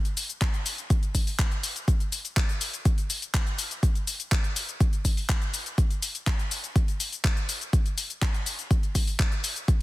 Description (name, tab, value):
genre	house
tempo	123 BPM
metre	4/4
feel	straight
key	none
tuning	none
part	deep house drum kit	drums	0.1-9.8 s	cabasa, handclaps, hi-hat	-30 LUFS	left 2 dB	overdrive, sidechain pumping on hats, sidechain pumping on perc
part	electronic kick drum	drums	0.4-9.8 s	none	-24 LUFS	equal	overdrive
room	little or no reverb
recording	dense, heavily limited modern master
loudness	-24 LUFS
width	side -18 dB against mid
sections	0.0-9.8 A section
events	none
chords	none